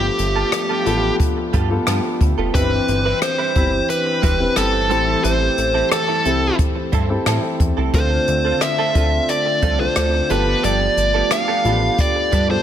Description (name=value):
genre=1980s-style pop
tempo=89 BPM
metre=4/4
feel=straight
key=unclear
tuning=A4 = 441 Hz
part: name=dark smooth lead guitar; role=melody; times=0.0-12.6 s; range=G4 to F5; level=-20 LUFS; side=equal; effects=overdrive, ping-pong delay
part: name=dark baby grand piano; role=accompaniment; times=0.0-12.6 s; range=B2 to B5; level=-24 LUFS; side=left 2 dB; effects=none
part: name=brassy analog pad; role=sustained chords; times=0.0-12.6 s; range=D3 to G4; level=-27 LUFS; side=left 1 dB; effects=chorus
part: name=direct-recorded clean electric guitar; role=riff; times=0.0-12.5 s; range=F3 to B4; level=-27 LUFS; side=right 8 dB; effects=ensemble chorus, ping-pong delay
part: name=fat analog bass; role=bass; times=0.0-12.6 s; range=E1 to A2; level=-22 LUFS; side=equal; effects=none
part: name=jazz brush drum kit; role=drums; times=0.2-12.5 s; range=hi-hat, kick drum, rim click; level=-21 LUFS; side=equal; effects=gated reverb
room=light reverb, studio reverb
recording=none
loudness=-15 LUFS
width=side -10 dB against mid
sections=0.0-12.6 A section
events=grand piano fill 6.9-7.9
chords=0.0 G9; 2.5 Cmaj7/G; 4.9 Am7; 7.9 Dm7; 10.3 G9